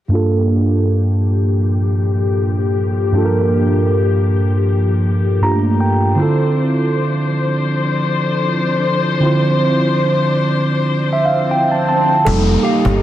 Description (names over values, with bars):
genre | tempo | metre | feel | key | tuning
contemporary R&B | 79 BPM | 4/4 | swing 54% on 16ths | G minor | A4 = 440 Hz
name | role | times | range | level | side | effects
mellow tine electric piano | accompaniment | 0.1-13.0 s | G2 to Bb5 | -14 LUFS | right 1 dB | phaser, low-pass filter
dark studio string section | sustained chords | 0.1-13.0 s | Bb2 to C5 | -20 LUFS | left 4 dB | low-pass filter
swell and downlifter | sound effects | 11.3-13.0 s | none | -25 LUFS | left 3 dB | none
deep dub fingered electric bass | bass | 12.3-13.0 s | F1 to G1 | -16 LUFS | left 1 dB | none
cajon | drums | 12.3-13.0 s | none | -22 LUFS | left 1 dB | none
soft synth bell | texture | 12.6-13.0 s | F5 | -23 LUFS | left 5 dB | chorus, phaser
room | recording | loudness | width
light reverb, studio reverb | none | -13 LUFS | side -12 dB against mid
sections
0.1-12.3 A section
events
filter sweep 0.1-12.3; tine electric piano fill 5.0-6.2, 10.7-12.3; swell 11.3-12.3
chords
0.1 Gm7; 6.2 Dm7; 12.3 F9sus4